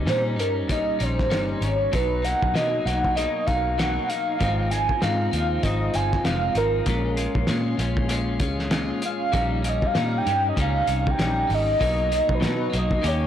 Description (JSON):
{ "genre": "indie pop, bedroom pop", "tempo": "97 BPM", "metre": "4/4", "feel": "swing 60% on 16ths", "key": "unclear", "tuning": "A4 = 440 Hz", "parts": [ { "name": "clean electric guitar", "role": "accompaniment", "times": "0.0-13.3 s", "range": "Ab2 to G4", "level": "-29 LUFS", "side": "left 3 dB", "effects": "wide subtle chorus, vibrato effect" }, { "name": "dark brass ensemble", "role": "sustained chords", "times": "0.0-13.3 s", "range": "Bb2 to F4", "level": "-34 LUFS", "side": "right 1 dB", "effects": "none" }, { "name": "vintage muted fingered electric bass", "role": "bass", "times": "0.0-13.3 s", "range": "F1 to B2", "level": "-26 LUFS", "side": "equal", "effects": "tube saturation" }, { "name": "warm velvety synth lead", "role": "melody", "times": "0.1-13.3 s", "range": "Bb4 to Ab5", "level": "-25 LUFS", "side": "right 1 dB", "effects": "wide subtle chorus, slapback echo" }, { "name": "cloth-damped thuddy drum kit", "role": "drums", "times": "0.1-13.2 s", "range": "hi-hat, kick drum, snare drum", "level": "-28 LUFS", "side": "equal", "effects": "none" } ], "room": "small room ambience", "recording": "blown-out, overdriven recording, overdrive", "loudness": "-21 LUFS", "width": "side -10 dB against mid", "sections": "0.0-13.3 A section", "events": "soft synth lead solo 0.0-13.3", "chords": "0.0 Eb7/Bb; 1.9 Bmaj7; 4.4 Ab6; 6.9 Bbm7; 9.3 Eb7/Bb; 11.8 Bmaj7", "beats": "0.08 0.70 1.32 | 1.93 2.55 3.17 3.78 | 4.40 5.02 5.63 6.25 | 6.87 7.49 8.10 8.72 | 9.34 9.95 10.57 11.19 | 11.80 12.42 13.04" }